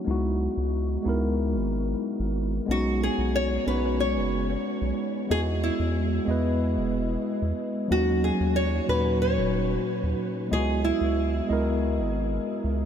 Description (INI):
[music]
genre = sunset chillout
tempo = 92 BPM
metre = 4/4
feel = straight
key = unclear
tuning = A4 = 441 Hz
[part]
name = mellow tine electric piano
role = accompaniment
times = 0.0-12.9 s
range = A#2 to D#5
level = -27 LUFS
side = equal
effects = auto-pan, analog delay
[part]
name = round analog bass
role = bass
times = 0.1-12.9 s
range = D#1 to E2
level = -28 LUFS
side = equal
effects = none
[part]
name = nylon-string guitar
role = melody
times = 2.7-12.8 s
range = E4 to C#5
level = -29 LUFS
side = right 1 dB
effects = wide subtle chorus, analog delay
[sound]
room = wet huge ambient reverb, RT60 7.6 s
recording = dreamy mix soaked in reverb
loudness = -23 LUFS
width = side -8 dB against mid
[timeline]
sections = 0.0-12.9 A section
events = none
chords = 0.1 C#m11; 2.7 B69; 5.3 Emaj7; 7.9 D#m7; 10.5 C#m11